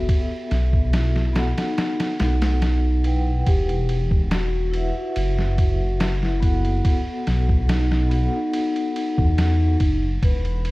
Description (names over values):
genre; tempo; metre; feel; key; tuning
trip hop; 71 BPM; 4/4; straight; E harmonic minor; A4 = 440 Hz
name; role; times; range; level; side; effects
pure breathy sine lead; melody; 0.0-10.7 s; D#4 to B4; -27 LUFS; equal; chorus, phaser, tape echo
vibraphone with soft mallets; accompaniment; 0.0-9.8 s; B3 to G5; -29 LUFS; left 1 dB; tremolo, vintage 12-bit sampler grit, tape echo
dark detuned saw bass; bass; 0.0-10.7 s; E1 to E2; -21 LUFS; equal; tube saturation
trip hop sampler-style drum kit; drums; 0.1-10.7 s; kick drum, ride cymbal, snare drum; -23 LUFS; equal; studio reverb
room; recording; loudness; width
little or no reverb; dark, warm production, vinyl crackle; -18 LUFS; side -20 dB against mid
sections
0.0-3.5 A section; 3.5-10.7 B section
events
none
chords
0.1 B7sus4; 3.5 Emadd9; 6.8 B7sus4